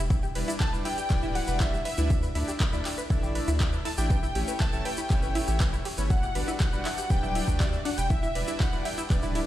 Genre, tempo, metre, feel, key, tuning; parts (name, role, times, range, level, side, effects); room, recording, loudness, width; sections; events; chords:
progressive house; 120 BPM; 4/4; straight; E dorian; A4 = 441 Hz
saturated sub bass; bass; 0.0-9.4 s; D1 to D2; -31 LUFS; equal; sidechain pumping
tight sequenced synth; arpeggios; 0.1-9.4 s; D4 to E6; -36 LUFS; equal; chorus, sidechain pumping, ping-pong delay
deep house drum kit; drums; 0.1-9.5 s; handclaps, hi-hat, ride cymbal; -37 LUFS; equal; overdrive
electronic kick drum; drums; 0.1-9.2 s; -26 LUFS; equal; overdrive
tube shaker; percussion; 0.1-9.3 s; -42 LUFS; left 2 dB
soft supersaw; stabs; 0.4-9.5 s; F#3 to E5; -34 LUFS; equal; sidechain pumping, ping-pong delay
plucky unison lead; melody; 0.6-9.1 s; D5 to A5; -35 LUFS; left 1 dB; sidechain pumping, ping-pong delay
clear studio violin section; second line; 0.6-9.1 s; D5 to A5; -39 LUFS; left 2 dB; sidechain pumping, ping-pong delay
light reverb, digital ambience; played on a big sound system in a bare room, stone room reverb; -25 LUFS; side -13 dB against mid
0.0-9.5 A section
0.1 Em7; 2.1 Dsus2; 4.1 A; 6.1 Gmaj7; 8.1 Em7